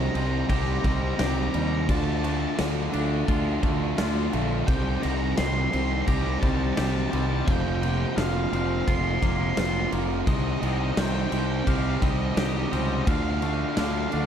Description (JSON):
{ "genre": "post-rock", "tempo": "86 BPM", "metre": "4/4", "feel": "straight", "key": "C dorian", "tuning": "A4 = 440 Hz", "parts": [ { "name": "octave-fuzz lead guitar", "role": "melody", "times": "0.0-14.3 s", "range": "Eb5 to C6", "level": "-34 LUFS", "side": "equal", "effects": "distortion, slapback echo" }, { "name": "evolving wavetable pad", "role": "sustained chords", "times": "0.0-14.3 s", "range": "G4 to D6", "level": "-41 LUFS", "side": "equal", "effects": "none" }, { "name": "twangy electric guitar", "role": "arpeggios", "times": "0.0-14.3 s", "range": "F2 to G4", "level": "-35 LUFS", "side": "left 2 dB", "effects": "wide subtle chorus, slapback echo" }, { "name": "raw garage guitar", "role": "riff", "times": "0.0-14.3 s", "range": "C3 to G4", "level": "-31 LUFS", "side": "right 12 dB", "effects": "overdrive" }, { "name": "thick fuzz guitar", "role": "riff", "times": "0.0-14.3 s", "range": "F2 to D4", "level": "-31 LUFS", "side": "left 12 dB", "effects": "distortion" }, { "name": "fuzz fingered electric bass", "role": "bass", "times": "0.0-14.3 s", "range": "F1 to Eb2", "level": "-27 LUFS", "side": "equal", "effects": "overdrive" }, { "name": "big rock drum kit", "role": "drums", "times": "0.1-14.3 s", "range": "crash cymbal, kick drum, snare drum", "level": "-28 LUFS", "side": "equal", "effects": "none" } ], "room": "small room ambience", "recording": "dark, warm production", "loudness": "-22 LUFS", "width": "side -8 dB against mid", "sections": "0.0-14.3 A section", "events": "none", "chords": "0.0 Cm; 1.9 Dm; 4.7 Cm; 7.5 Fsus4; 10.3 Cm; 13.1 Dm" }